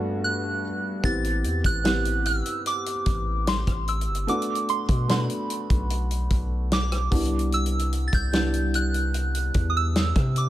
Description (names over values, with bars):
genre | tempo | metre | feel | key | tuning
contemporary R&B | 74 BPM | 4/4 | straight | A dorian | A4 = 437 Hz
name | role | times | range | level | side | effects
soft synth bell | melody | 0.0-10.5 s | B5 to A6 | -28 LUFS | right 2 dB | chorus, phaser, tape echo
felt-muted upright piano | accompaniment | 0.0-10.5 s | G2 to G4 | -30 LUFS | equal | none
long sustained 808-style bass | bass | 1.0-10.5 s | G1 to C3 | -25 LUFS | equal | none
warm soul drum kit | drums | 1.0-10.5 s | hi-hat, kick drum, rim click, snare drum | -26 LUFS | equal | none
room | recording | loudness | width
little or no reverb | none | -22 LUFS | side -14 dB against mid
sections
0.0-1.0 A section; 1.0-10.5 B section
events
break 0.0-1.0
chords
0.0 Gmaj7; 1.0 Am7; 4.3 Bm7; 7.1 Cmaj7